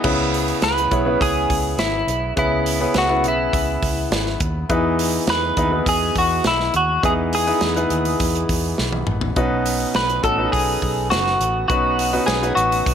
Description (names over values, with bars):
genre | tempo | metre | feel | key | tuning
piano-driven pop | 103 BPM | 4/4 | straight | C# minor | A4 = 440 Hz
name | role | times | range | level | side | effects
clear concert grand piano | accompaniment | 0.0-12.9 s | B2 to C#5 | -22 LUFS | equal | none
vintage muted fingered electric bass | bass | 0.0-12.9 s | F#1 to E2 | -26 LUFS | equal | none
modern studio drum kit | drums | 0.0-12.9 s | crash cymbal, hi-hat, kick drum, snare drum, toms | -24 LUFS | right 1 dB | none
clean electric guitar | melody | 0.6-12.9 s | E4 to B4 | -20 LUFS | equal | analog chorus
room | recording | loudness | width
moderate studio reverb, RT60 0.7 s | none | -17 LUFS | side -8 dB against mid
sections
0.0-12.9 A section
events
drum fill 8.8-9.4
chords
0.0 C#m7; 4.7 Emaj7; 9.4 Badd9